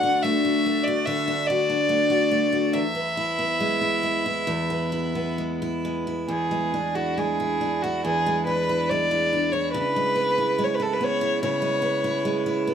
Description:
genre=celtic folk, Celtic slow air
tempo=64-74 BPM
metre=4/4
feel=rubato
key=E mixolydian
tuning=A4 = 441 Hz
part: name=rich fiddle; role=melody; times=0.0-12.6 s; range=F#4 to F#5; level=-24 LUFS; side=equal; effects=none
part: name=picked steel-string acoustic guitar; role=accompaniment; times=0.0-12.7 s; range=E2 to F#4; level=-24 LUFS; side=equal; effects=none
room=little or no reverb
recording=dry, close 1970s-style studio recording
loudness=-21 LUFS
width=side -8 dB against mid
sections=0.0-6.3 A section; 6.3-12.7 B section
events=none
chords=0.0 D; 2.7 E; 6.3 E7; 9.7 C#m7

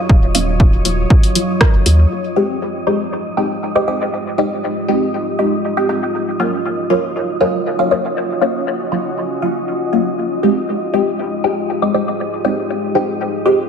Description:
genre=dub techno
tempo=119 BPM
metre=4/4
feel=straight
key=unclear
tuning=A4 = 440 Hz
part: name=deep dark ambient pad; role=sustained chords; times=0.0-13.7 s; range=Gb3 to Eb5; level=-22 LUFS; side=equal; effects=chorus, built-in reverb, sidechain pumping
part: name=filtered dub chord stab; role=stabs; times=0.0-13.6 s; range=Gb3 to G4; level=-17 LUFS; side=equal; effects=phaser, sidechain pumping, dub echo
part: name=wind-like tuned noise texture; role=texture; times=0.0-13.7 s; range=Eb4 to Eb5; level=-28 LUFS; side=equal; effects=built-in reverb, sidechain pumping
part: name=pure sine sub bass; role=bass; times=0.1-2.1 s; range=Eb1 to Eb2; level=-14 LUFS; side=equal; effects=sidechain pumping
part: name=electronic kick drum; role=drums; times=0.1-1.7 s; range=none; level=-11 LUFS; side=equal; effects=none
part: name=deep house drum kit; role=drums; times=0.3-2.0 s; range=hi-hat, rim click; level=-17 LUFS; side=equal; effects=overdrive, low-pass filter on hats, low-pass filter on snare, low-pass filter on room
room=moderate echo chamber reverb, RT60 1.8 s, digital ambience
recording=none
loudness=-14 LUFS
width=side -6 dB against mid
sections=0.0-2.1 A section; 2.1-13.7 B section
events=filter sweep on synth stab 0.0-2.1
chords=0.0 Ebm9; 2.1 Fm9; 6.1 Ebm9; 10.2 Fm9

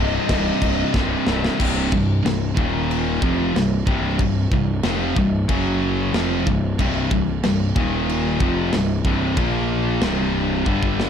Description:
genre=heavy metal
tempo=92 BPM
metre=4/4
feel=straight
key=C minor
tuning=A4 = 440 Hz
part: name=high-gain lead guitar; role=melody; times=0.0-0.9 s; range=Eb5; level=-28 LUFS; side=left 6 dB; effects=distortion, ping-pong delay
part: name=chamber organ, soft reed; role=sustained chords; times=0.0-1.6 s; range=C3 to Eb4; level=-36 LUFS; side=right 1 dB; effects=none
part: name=scooped high-gain guitar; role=riff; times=0.0-11.1 s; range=C2 to Bb3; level=-24 LUFS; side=right 11 dB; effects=distortion
part: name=tight distorted guitar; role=riff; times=0.0-11.1 s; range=C2 to Bb3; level=-23 LUFS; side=left 10 dB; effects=distortion
part: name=fuzz picked electric bass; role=bass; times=0.0-11.1 s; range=C1 to Bb1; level=-24 LUFS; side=equal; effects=overdrive
part: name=tight metal drum kit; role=drums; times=0.3-11.1 s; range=crash cymbal, kick drum, snare drum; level=-24 LUFS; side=equal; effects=none
room=little or no reverb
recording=dark, warm production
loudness=-18 LUFS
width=side -8 dB against mid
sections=0.0-1.6 A section; 1.6-11.1 B section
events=half time 0.0-1.6; drum fill 0.9-1.6, 10.7-11.1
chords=0.0 Cm; 1.6 C5; 2.6 Eb5; 3.2 C5; 5.5 F#5; 6.1 C5; 7.8 Eb5; 8.4 C5; 9.4 Bb5; 10.0 C5

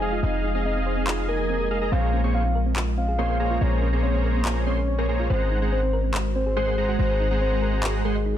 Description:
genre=future bass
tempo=142 BPM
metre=4/4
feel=half-time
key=unclear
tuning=A4 = 440 Hz
part: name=soft octave-layered synth lead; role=melody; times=0.0-8.4 s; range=Ab4 to Ab5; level=-29 LUFS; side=left 1 dB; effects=chorus, digital delay
part: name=ethereal airy pad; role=sustained chords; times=0.0-8.4 s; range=F3 to Eb5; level=-33 LUFS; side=right 2 dB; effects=ensemble chorus, built-in reverb, vintage 12-bit sampler grit
part: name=thumb-piano-like synth pluck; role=arpeggios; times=0.0-8.3 s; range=C4 to Eb5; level=-33 LUFS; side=right 3 dB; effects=chorus, digital delay
part: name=dense compressed supersaw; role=riff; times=0.0-8.2 s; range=Ab3 to Db6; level=-28 LUFS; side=right 1 dB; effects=low-pass filter, digital delay
part: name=warm 808-style bass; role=bass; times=0.0-8.4 s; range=F1 to Bb1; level=-24 LUFS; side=equal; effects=none
part: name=electronic handclaps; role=drums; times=1.1-7.9 s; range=none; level=-30 LUFS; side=left 1 dB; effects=small room ambience
room=light reverb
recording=none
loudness=-21 LUFS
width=side -10 dB against mid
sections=0.0-8.4 A section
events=filter sweep on synth arpeggio sound 0.0-8.4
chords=0.0 Fm7; 1.9 Bbm9; 5.3 Ab9

